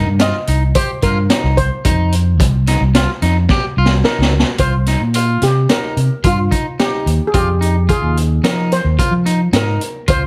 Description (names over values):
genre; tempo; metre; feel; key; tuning
progressive instrumental, band music in an uneven meter; 109 BPM; 5/4; straight; C phrygian; A4 = 442 Hz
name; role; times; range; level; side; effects
steel pan; melody; 0.0-10.3 s; F4 to Eb5; -23 LUFS; equal; tape echo
electric guitar at the edge of break-up; arpeggios; 0.0-10.2 s; Eb4 to G4; -24 LUFS; equal; none
fingered electric bass; bass; 0.1-10.3 s; C2 to F3; -17 LUFS; equal; none
raw garage drum kit; drums; 0.2-10.2 s; hi-hat, kick drum, snare drum; -20 LUFS; equal; none
room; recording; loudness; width
light reverb; heavily compressed radio sound; -15 LUFS; mono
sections
0.0-4.6 A section; 4.6-10.3 B section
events
drum fill 3.5-4.6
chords
0.0 Cm7; 1.9 F7(no3); 4.6 Cm7; 7.3 Fm9